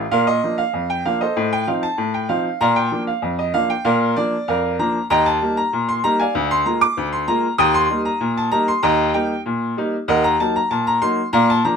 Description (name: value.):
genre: ragtime piano.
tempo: 96 BPM.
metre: 2/4.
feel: straight.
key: Bb major.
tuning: A4 = 440 Hz.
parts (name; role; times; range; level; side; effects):
clear upright piano; solo; 0.0-11.8 s; D2 to Eb6; -16 LUFS; equal; none.
room: light reverb.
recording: none.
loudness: -17 LUFS.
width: side -6 dB against mid.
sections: 0.1-11.8 A section.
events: none.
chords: 0.1 Bb; 1.4 F7/A; 2.6 Bb; 5.1 Eb; 6.3 Bb7/D; 7.6 Eb; 10.1 Ebm.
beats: | 0.11 0.74 | 1.36 1.99 | 2.61 3.23 | 3.86 4.48 | 5.11 5.73 | 6.35 6.97 | 7.59 8.22 | 8.84 9.46 | 10.08 10.70 | 11.32.